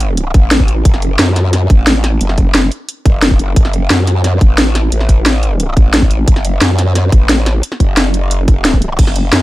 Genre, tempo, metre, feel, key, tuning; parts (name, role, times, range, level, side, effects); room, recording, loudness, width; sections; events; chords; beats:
dark technical drum and bass; 177 BPM; 4/4; straight; F# minor; A4 = 437 Hz
growl bass; bass; 0.0-9.4 s; F#1 to F#2; -13 LUFS; equal; chorus, tube saturation
drum and bass drum kit; drums; 0.0-9.4 s; crash cymbal, hi-hat, snare drum; -14 LUFS; equal; small room ambience
electronic kick drum; drums; 0.3-9.1 s; -9 LUFS; equal; small room ambience
little or no reverb; -9 LUFS; side -17 dB against mid
0.0-9.4 A section
0.17 0.51 | 0.85 1.19 1.53 1.87 | 2.21 2.55 2.89 3.23 | 3.56 3.90 4.24 4.58 | 4.92 5.26 5.60 5.94 | 6.28 6.61 6.95 7.29 | 7.63 7.97 8.31 8.65 | 8.99 9.33